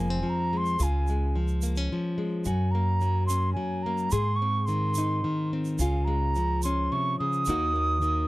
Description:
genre	acoustic folk duo or small band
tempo	108 BPM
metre	3/4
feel	straight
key	unclear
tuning	A4 = 441 Hz
part	wooden flute	melody	0.0-8.3 s	Ab5 to Eb6	-29 LUFS	right 2 dB	none
part	nylon-string guitar	accompaniment	0.0-8.3 s	Eb2 to Ab4	-29 LUFS	left 1 dB	none
part	upright bass	bass	0.0-8.3 s	F1 to Ab2	-27 LUFS	equal	none
part	egg shaker	percussion	0.7-8.1 s	none	-39 LUFS	right 6 dB	none
room	little or no reverb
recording	dry, close 1970s-style studio recording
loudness	-24 LUFS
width	side -19 dB against mid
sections	0.0-8.3 A section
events	none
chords	0.0 Fm; 0.8 Db; 2.5 Gb; 4.1 Ab; 5.8 Db; 7.5 Ebm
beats	0.24 | 0.79 1.35 1.91 | 2.46 3.02 3.57 | 4.13 4.68 5.24 | 5.80 6.35 6.91 | 7.47 8.03

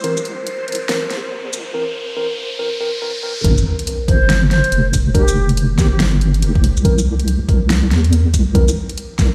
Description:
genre	deep dubstep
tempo	141 BPM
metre	4/4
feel	swing 62% on 16ths, half-time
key	unclear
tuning	A4 = 441 Hz
part	mellow tine electric piano	stabs	0.0-8.6 s	E3 to Bb4	-27 LUFS	equal	vintage 12-bit sampler grit, dub echo
part	deep soft wobble bass	bass	0.0-9.3 s	F1 to E2	-18 LUFS	equal	chorus, high-pass filter
part	dubstep drum kit	drums	0.0-9.3 s	hi-hat, shaker, snare drum	-25 LUFS	equal	overdrive, high-pass filter on perc, studio reverb, high-pass filter on hats, high-pass filter on snare
part	riser and sub drop	sound effects	0.0-5.1 s	none	-28 LUFS	equal	none
part	backwards swelling texture	texture	0.0-1.7 s	C5	-31 LUFS	equal	built-in reverb
part	electronic kick drum	drums	3.4-9.3 s	none	-17 LUFS	equal	overdrive, studio reverb
part	breathy bright ney	melody	4.1-6.0 s	G4 to C5	-27 LUFS	equal	dub echo
room	light reverb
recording	played on a big sound system in a bare room, stone room reverb, high-pass filter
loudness	-17 LUFS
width	mono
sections	0.0-3.4 A section; 3.4-9.3 B section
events	build-up 0.0-3.4; riser 0.0-3.4; filter sweep 0.0-3.4; drop 3.4-9.3; impact 3.4-5.1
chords	0.0 C7; 3.4 N.C.; 6.8 C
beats	| 0.04 0.47 0.89 1.32 | 1.74 2.17 2.59 3.02 | 3.44 3.87 4.29 4.72 | 5.15 5.57 6.00 6.42 | 6.85 7.27 7.70 8.12 | 8.55 8.98

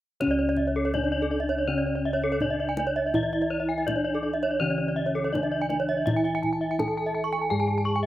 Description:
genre	Balinese gamelan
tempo	82 BPM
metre	4/4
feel	straight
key	C# pelog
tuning	A4 = 440 Hz
part	gamelan-type bronze metallophone	melody	0.2-8.1 s	C#4 to A4-20c	-30 LUFS	equal	slapback echo
part	gamelan-type bronze metallophone	accompaniment	0.2-8.1 s	C#3 to G#3-30c	-35 LUFS	equal	none
part	gamelan-type bronze metallophone	arpeggios	0.2-8.1 s	A4-20c to C#6	-30 LUFS	left 4 dB	slapback echo
part	gamelan-type bossed gongs	bass	0.2-8.1 s	C#2 to E4-30c	-30 LUFS	equal	none
part	kendang	percussion	0.2-7.4 s	none	-34 LUFS	left 1 dB	none
part	gamelan-type bronze metallophone	arpeggios	0.3-8.0 s	A4-20c to C#6	-29 LUFS	right 4 dB	slapback echo
room	little or no reverb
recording	recorded outdoors, with no room sound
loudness	-24 LUFS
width	side -14 dB against mid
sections	0.2-8.1 A section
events	none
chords	none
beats	| 0.21 0.94 1.68 2.41 | 3.14 3.87 4.60 5.33 | 6.07 6.79 7.51

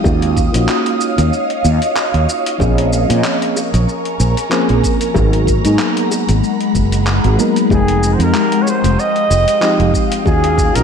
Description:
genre	sunset chillout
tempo	94 BPM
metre	4/4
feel	swing 55% on 16ths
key	unclear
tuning	A4 = 440 Hz
part	mellow FM electric piano	accompaniment	0.0-10.8 s	F3 to G5	-19 LUFS	equal	chorus, auto-pan, analog delay
part	ethereal airy pad	sustained chords	0.0-10.8 s	Ab3 to Eb6	-18 LUFS	left 1 dB	ensemble chorus, built-in reverb, phaser
part	fretless electric bass	bass	0.0-10.8 s	F1 to Bb2	-14 LUFS	equal	lush chorus
part	electronic kick drum	drums	0.0-10.7 s	none	-18 LUFS	equal	none
part	bongos	percussion	0.0-10.4 s	none	-26 LUFS	left 2 dB	none
part	dusty soul sampler-style drum kit	drums	0.1-10.8 s	handclaps, hi-hat, shaker	-24 LUFS	equal	none
part	warm flugelhorn	melody	7.7-10.8 s	Ab4 to Eb5	-16 LUFS	right 1 dB	tape echo
room	moderate plate reverb, RT60 2.2 s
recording	dreamy mix soaked in reverb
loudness	-12 LUFS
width	side -7 dB against mid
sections	0.0-10.8 A section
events	none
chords	0.0 Ebm9; 2.6 Bbm9; 5.2 Abm9; 7.7 Fm9; 10.3 Ebm9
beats	| 0.05 0.69 1.32 1.96 | 2.60 3.24 3.88 4.52 | 5.15 5.79 6.43 7.07 | 7.71 8.35 8.98 9.62 | 10.26

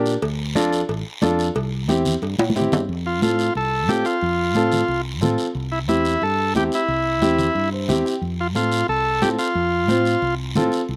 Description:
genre	latin, cumbia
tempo	180 BPM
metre	4/4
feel	straight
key	F major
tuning	A4 = 437 Hz
part	warm upright piano	accompaniment	0.0-10.8 s	C4 to G5	-25 LUFS	equal	slapback echo
part	fingered electric bass	bass	0.0-11.0 s	A1 to Bb2	-28 LUFS	equal	none
part	guiro	percussion	0.1-11.0 s	none	-36 LUFS	equal	none
part	congas	percussion	0.2-11.0 s	none	-28 LUFS	equal	none
part	cowbell and timbales	percussion	0.2-2.8 s	none	-28 LUFS	equal	none
part	combo organ	melody	3.1-10.3 s	E4 to A4	-23 LUFS	equal	none
room	little or no reverb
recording	recorded outdoors, with no room sound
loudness	-21 LUFS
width	mono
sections	0.0-2.9 A section; 2.9-11.0 B section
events	drum fill 2.4-2.9; upright piano fill 7.6-8.2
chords	0.2 Dm; 1.6 C; 2.9 F; 5.6 C; 8.2 F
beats	| 0.23 0.56 0.89 1.23 | 1.56 1.89 2.22 2.56 | 2.89 3.22 3.56 3.89 | 4.22 4.55 4.89 5.22 | 5.55 5.89 6.22 6.55 | 6.89 7.22 7.55 7.89 | 8.22 8.55 8.89 9.22 | 9.55 9.89 10.22 10.55 | 10.89

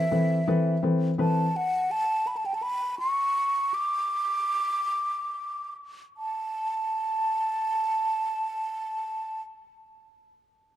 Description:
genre	pop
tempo	46-56 BPM (dotted quarters)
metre	6/8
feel	straight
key	unclear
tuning	A4 = 440 Hz
part	breathy mellow concert flute	melody	0.0-9.4 s	E5 to D6	-26 LUFS	right 1 dB	analog delay
part	felt-muted upright piano	accompaniment	0.0-1.5 s	E3 to B4	-23 LUFS	left 2 dB	none
room	moderate plate reverb, RT60 2.9 s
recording	dark, warm production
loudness	-25 LUFS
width	side -12 dB against mid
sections	0.0-6.2 A section; 6.2-10.8 B section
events	slowing down 1.5-6.2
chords	0.0 Amadd9/E; 1.5 N.C.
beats	0.47 | 1.55 2.63 | 3.75 4.92 | 6.16 7.46 | 8.75

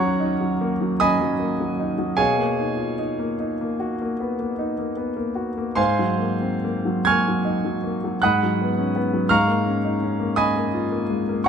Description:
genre	classical, impressionist solo piano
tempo	45-56 BPM (dotted quarters)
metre	9/8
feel	rubato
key	unclear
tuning	A4 = 439 Hz
part	clear grand piano	solo	0.0-11.5 s	Eb2 to Ab6	-20 LUFS	equal	none
room	moderate recital hall reverb, RT60 1.4 s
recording	close, detailed microphones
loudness	-20 LUFS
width	side -7 dB against mid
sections	0.0-11.5 A section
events	none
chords	0.0 Ebm7; 2.2 Bmaj7; 5.8 Ab9; 8.2 B/Ab; 9.3 Bbm7/Ab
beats	0.98 | 2.19 3.42 4.60 | 5.77 7.05 8.20 | 9.30 10.38 11.47

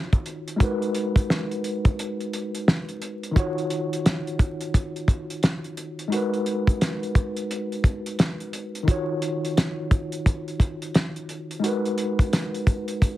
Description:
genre	hip hop, boom-bap hip-hop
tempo	87 BPM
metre	4/4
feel	swing 62% on 16ths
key	Eb minor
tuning	A4 = 440 Hz
part	tine electric piano	accompaniment	0.0-13.2 s	Eb3 to Db5	-28 LUFS	left 1 dB	overdrive, fast stereo tremolo, high-pass filter, low-pass filter
part	cloth-damped thuddy drum kit	drums	0.1-13.2 s	hi-hat, kick drum, snare drum	-21 LUFS	equal	none
room	light reverb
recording	heavily compressed radio sound, multiband compression, vinyl crackle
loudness	-22 LUFS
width	side -15 dB against mid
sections	0.0-3.4 A section; 3.4-13.2 B section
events	break 2.0-3.4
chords	0.0 Ebm9; 0.6 Abm7; 3.4 Ebm9; 6.1 Abm7; 8.9 Ebm9; 11.6 Abm7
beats	| 0.60 1.29 1.98 2.67 | 3.36 4.05 4.74 5.43 | 6.12 6.81 7.50 8.19 | 8.88 9.57 10.26 10.95 | 11.64 12.32 13.02

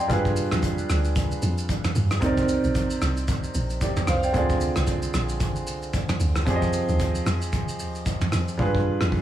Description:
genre	amapiano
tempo	113 BPM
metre	4/4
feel	swing 58% on 16ths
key	C minor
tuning	A4 = 440 Hz
part	warm grand piano	accompaniment	0.0-9.2 s	C3 to C6	-26 LUFS	right 2 dB	none
part	deep log drum bass	bass	0.0-9.2 s	Bb1 to G2	-26 LUFS	equal	none
part	soft brush drum kit	drums	0.1-9.2 s	hi-hat, kick drum, rim click, shaker, toms	-26 LUFS	right 1 dB	none
room	light reverb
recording	small room ambience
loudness	-22 LUFS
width	side -12 dB against mid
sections	0.0-9.2 A section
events	hi-hats muted 8.6-9.2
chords	0.1 G7b9; 2.2 Cm9; 4.3 Dm7b5; 6.5 Fm9; 8.6 G7b9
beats	| 0.10 0.63 1.16 1.69 | 2.22 2.75 3.28 3.81 | 4.34 4.87 5.41 5.94 | 6.47 7.00 7.53 8.06 | 8.59 9.12

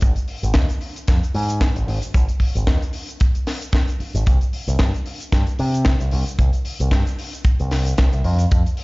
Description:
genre	nu-disco, nu disco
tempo	113 BPM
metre	4/4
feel	swing 55% on 16ths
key	unclear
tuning	A4 = 442 Hz
part	picked electric bass with an envelope filter	bass	0.0-8.6 s	Ab1 to C3	-20 LUFS	equal	none
part	kick drum	drums	0.0-8.6 s	none	-18 LUFS	equal	small room ambience
part	tight funk drum kit	drums	0.0-8.8 s	hi-hat, shaker, snare drum	-28 LUFS	left 1 dB	small room ambience
room	little or no reverb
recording	played on a big sound system in a bare room, large studio reverb, nothing above 7.5 kHz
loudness	-17 LUFS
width	side -25 dB against mid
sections	0.0-8.8 A section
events	none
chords	none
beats	| 0.02 0.55 1.08 1.61 | 2.14 2.67 3.20 3.73 | 4.26 4.80 5.33 5.86 | 6.39 6.92 7.45 7.98 | 8.51

